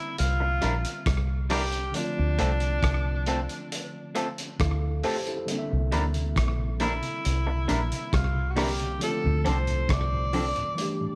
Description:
lovers rock reggae; 68 BPM; 4/4; straight; D minor; A4 = 440 Hz
clear tenor saxophone; melody; 0.0-11.2 s; D4 to D5; -34 LUFS; equal; tape echo
tine electric piano; accompaniment; 0.0-11.2 s; D3 to A5; -37 LUFS; equal; overdrive, slapback echo
deep dub fingered electric bass; bass; 0.2-10.5 s; Bb1 to D2; -29 LUFS; equal
cloth-damped thuddy drum kit; drums; 0.2-11.0 s; hi-hat, kick drum, rim click; -34 LUFS; equal; slapback echo
electric guitar through a small old amp; stabs; 0.4-10.4 s; F3 to Bb4; -34 LUFS; equal
mellow tonewheel organ; accompaniment; 5.7-11.1 s; D2 to D4; -38 LUFS; equal
studio ambience; -27 LUFS; mono
0.0-11.2 A section
tine electric piano fill 4.2-5.5, 10.8-11.2
0.0 C9; 1.9 Dm7; 5.5 C9; 9.0 Dm7

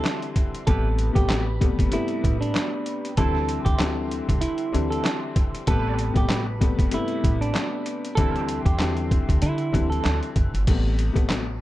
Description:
hip hop, boom-bap hip-hop; 96 BPM; 4/4; swing 55% on 16ths; A minor; A4 = 440 Hz
semi-hollow electric guitar; melody; 0.0-10.2 s; D4 to A4; -29 LUFS; right 4 dB; high-pass filter, low-pass filter, slapback echo
clear upright piano; accompaniment; 0.0-11.4 s; C3 to C4; -28 LUFS; left 5 dB; cassette tape, high-pass filter, low-pass filter
dark analog pad; sustained chords; 0.0-10.6 s; G4 to C6; -38 LUFS; right 4 dB; chorus, high-pass filter, low-pass filter
trip hop sampler-style drum kit; drums; 0.0-11.5 s; crash cymbal, handclaps, hi-hat, kick drum, snare drum; -23 LUFS; equal
dark trumpet section; stabs; 0.7-8.4 s; C4 to B4; -37 LUFS; right 6 dB; high-pass filter, low-pass filter, slapback echo
upright bass; bass; 0.7-11.6 s; F#1 to D3; -26 LUFS; equal
little or no reverb; dark, warm production; -21 LUFS; side -15 dB against mid
0.0-10.7 A section
0.0 D9sus4; 0.7 Am9; 3.2 D9sus4; 5.7 Am9; 8.2 D9sus4; 10.7 Am9

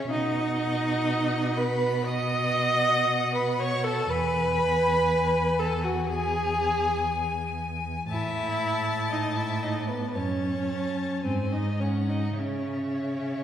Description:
classical, slow romantic movement for string quartet; 51-61 BPM; 4/4; rubato; A4 = 439 Hz
rich violin; melody; 0.0-13.4 s; E5 to A5; -34 LUFS; left 5 dB
rich violin; second line; 0.0-13.4 s; B4 to D#6; -33 LUFS; left 2 dB
rich viola; accompaniment; 0.0-13.4 s; B3 to D#5; -27 LUFS; right 1 dB
rich cello; bass; 0.0-13.4 s; E2 to C#3; -30 LUFS; right 1 dB
wet scoring stage reverb, RT60 1.9 s; heard from further back in the room; -24 LUFS; side -10 dB against mid
0.0-13.4 A section
0.1 B; 4.1 E; 8.1 A5; 10.2 F#m; 11.2 G#add11; 12.4 C#m

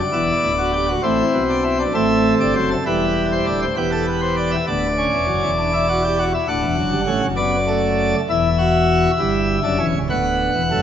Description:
classical, baroque-style 4-part fugue for pipe organ; 66 BPM (dotted quarters); 12/8; straight; E minor; A4 = 440 Hz
pipe organ, plenum; solo; 0.0-10.8 s; C#1 to F#5; -16 LUFS; equal
wet concert hall reverb, RT60 2.0 s; nothing above 7.8 kHz; -16 LUFS; side -9 dB against mid
0.0-10.8 A section
0.0 G; 1.0 Am; 2.9 Em; 4.7 Bm/D; 6.5 D; 8.3 Em; 10.1 Bm/D

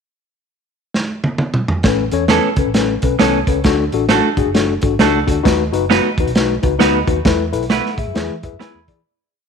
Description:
uptempo 1960s-style soul; 133 BPM; 4/4; swing 62% on 8ths; A major; A4 = 439 Hz
crunchy breakbeat drum kit; drums; 0.9-9.0 s; hi-hat, kick drum, snare drum, toms; -17 LUFS; right 2 dB
vintage muted fingered electric bass; bass; 1.8-9.0 s; F#1 to E3; -23 LUFS; right 2 dB
mellow tine electric piano; accompaniment; 1.9-9.0 s; C#4 to B5; -18 LUFS; left 11 dB; fast stereo tremolo
clean electric guitar; stabs; 2.3-8.8 s; E3 to B4; -18 LUFS; right 12 dB
light reverb, small room reverb; 1960s-style stereo with parts hard left and right; -13 LUFS; side -6 dB against mid
0.0-1.8 pickup bar; 1.8-9.1 verse
drum fill 0.9-1.8; fade-out 7.3-9.1; tine electric piano fill 8.2-9.1
0.0 N.C.; 1.8 Aadd9; 3.6 D; 5.5 B; 7.3 Esus4; 8.2 E

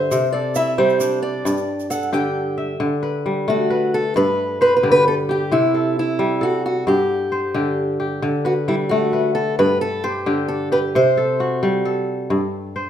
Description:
west african traditional, West African string and xylophone music; 88 BPM (dotted quarters); 12/8; straight; A4 = 437 Hz
fingerpicked acoustic archtop guitar; melody; 0.0-11.6 s; E4 to G5; -19 LUFS; right 1 dB
kora; arpeggios; 0.0-12.9 s; G2 to E5; -20 LUFS; left 1 dB
tube shaker; percussion; 0.1-2.2 s; -35 LUFS; right 8 dB
moderate recital hall reverb, RT60 1.3 s; minimal, uncompressed stereo recording; -17 LUFS; side -10 dB against mid
0.0-2.8 A section; 2.8-12.9 B section
steel-string acoustic guitar solo 0.0-2.8
0.1 C; 1.5 G5; 2.8 D; 4.2 G; 5.5 C; 6.9 G5; 8.2 D; 9.6 G; 10.9 C5; 12.3 G5

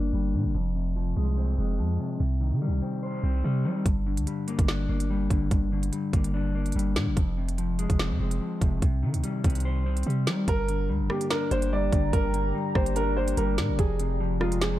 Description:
hip hop, drill; 145 BPM; 4/4; half-time; G phrygian; A4 = 440 Hz
mellow electric guitar; accompaniment; 0.0-14.8 s; F2 to C5; -29 LUFS; left 3 dB; low-pass filter
long sustained 808-style bass; bass; 0.0-14.8 s; F1 to G3; -27 LUFS; right 1 dB
drill drum kit; drums; 3.9-14.7 s; hi-hat, kick drum, rim click, snare drum; -27 LUFS; right 1 dB
dark baby grand piano; melody; 10.5-14.8 s; F4 to D5; -30 LUFS; right 3 dB
deep dark ambient pad; sustained chords; 11.6-14.8 s; G4 to C6; -34 LUFS; equal; chorus, built-in reverb
digital ambience; dark, warm production; -24 LUFS; side -14 dB against mid
0.0-10.5 A section; 10.5-14.8 B section
filter sweep on clean electric guitar 0.0-3.9
0.0 Gm; 0.5 Fm; 2.2 Cm; 3.9 Gm; 7.2 Fm; 8.8 Cm; 10.5 Gm; 13.8 Fm

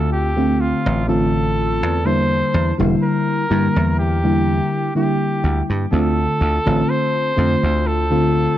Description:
vaporwave; 62 BPM; 4/4; straight; D minor; A4 = 440 Hz
clear flugelhorn; melody; 0.0-8.6 s; F4 to C5; -22 LUFS; equal; tape echo
mellow FM electric piano; accompaniment; 0.0-8.6 s; D3 to F4; -19 LUFS; left 1 dB; lush chorus
dry thumbed slap bass; bass; 0.0-8.5 s; E1 to G2; -20 LUFS; equal; tube saturation
light reverb, small room ambience; dark, warm production, cassette tape; -16 LUFS; side -12 dB against mid
0.0-8.6 A section
0.0 Dm7; 2.0 Em7b5; 5.9 Dm7

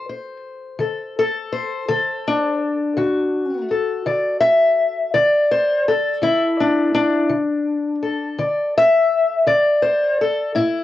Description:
acoustic country blues, solo or duo; 56 BPM (dotted quarters); 12/8; straight; A4 = 441 Hz
fingerpicked steel-string acoustic guitar; solo; 0.0-10.8 s; A2 to E5; -17 LUFS; left 2 dB; cassette tape
moderate studio reverb, RT60 0.6 s; home recording on cassette; -16 LUFS; side -13 dB against mid
0.0-10.8 A section
0.0 D7

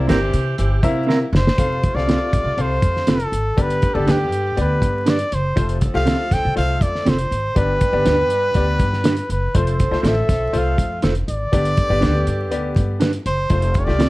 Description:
uptempo 1960s-style soul; 121 BPM; 4/4; straight; F lydian; A4 = 440 Hz
mellow saxophone section; second line; 0.0-14.1 s; C3 to B4; -26 LUFS; right 1 dB
clear upright piano; accompaniment; 0.0-14.1 s; G2 to F5; -26 LUFS; left 4 dB
upright bass; bass; 0.0-14.1 s; F1 to C3; -21 LUFS; equal
mellow electric guitar; stabs; 0.1-14.1 s; C4 to C5; -22 LUFS; right 3 dB
cloth-damped thuddy drum kit; drums; 0.1-14.1 s; hi-hat, kick drum, snare drum; -20 LUFS; equal
clear trumpet; melody; 1.4-14.1 s; G4 to G5; -22 LUFS; equal
light reverb, small room ambience; vinyl crackle; -16 LUFS; side -19 dB against mid
0.0-1.6 A section; 1.6-14.1 B section
drum fill 1.1-1.6
0.0 C7; 1.6 F; 3.6 G; 5.6 F; 7.6 G; 9.5 F; 11.5 G; 13.5 F

